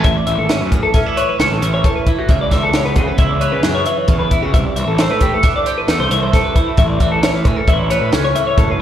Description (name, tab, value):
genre	math rock and midwest emo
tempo	134 BPM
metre	5/4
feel	straight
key	A major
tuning	A4 = 440 Hz
part	twangy electric guitar	accompaniment	0.0-8.8 s	A2 to B4	-21 LUFS	right 8 dB	lush chorus, slapback echo
part	twelve-string electric guitar	arpeggios	0.0-8.8 s	E4 to E5	-18 LUFS	left 3 dB	lush chorus, analog delay, slapback echo
part	fuzz picked electric bass	bass	0.0-8.8 s	F#1 to C#3	-19 LUFS	equal	overdrive
part	compact cocktail drum kit	drums	0.0-8.7 s	hi-hat, kick drum, snare drum	-16 LUFS	equal	none
room	little or no reverb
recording	live gig heard through the venue's PA, recital hall reverb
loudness	-13 LUFS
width	side -10 dB against mid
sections	0.1-8.8 A section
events	none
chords	0.1 Amaj9; 2.3 C#m7; 4.5 C69; 6.8 E5